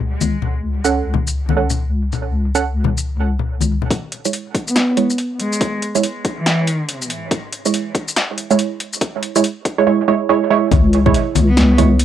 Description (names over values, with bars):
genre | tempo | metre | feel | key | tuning
deep dubstep | 141 BPM | 4/4 | swing 61% on 16ths, half-time | C# minor | A4 = 440 Hz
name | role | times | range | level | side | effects
deep soft wobble bass | bass | 0.0-3.9, 10.7-12.0 s | C#2 | -17 LUFS | left 1 dB | chorus
deep house drum kit | drums | 0.2-12.0 s | hi-hat, shaker, snare drum | -21 LUFS | left 1 dB | overdrive, high-pass filter on perc, studio reverb, cassette tape, high-pass filter on hats, high-pass filter on snare
congas | percussion | 0.2-3.9, 10.7-11.9 s | none | -22 LUFS | left 9 dB | none
filtered dub chord stab | stabs | 0.8-12.0 s | G#3 to F#5 | -18 LUFS | right 7 dB | chorus, cassette tape, dub echo
electronic kick drum | drums | 3.9-11.1 s | none | -18 LUFS | left 1 dB | overdrive, high-pass filter on kick, studio reverb, cassette tape
rich cello | melody | 4.7-7.0, 11.5-11.8 s | E3 to B3 | -21 LUFS | equal | low-pass filter, cassette tape, dub echo
room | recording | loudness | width
moderate booth ambience, RT60 0.2 s | home recording on cassette | -15 LUFS | side -10 dB against mid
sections
0.0-3.9 A section; 3.9-10.7 B section; 10.7-12.0 C section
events
build-up 3.9-10.7; filter sweep on synth stab 3.9-10.7; filter sweep on cello 3.9-10.7; drop 10.7-12.0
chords
0.0 F#m/C#; 3.9 C#m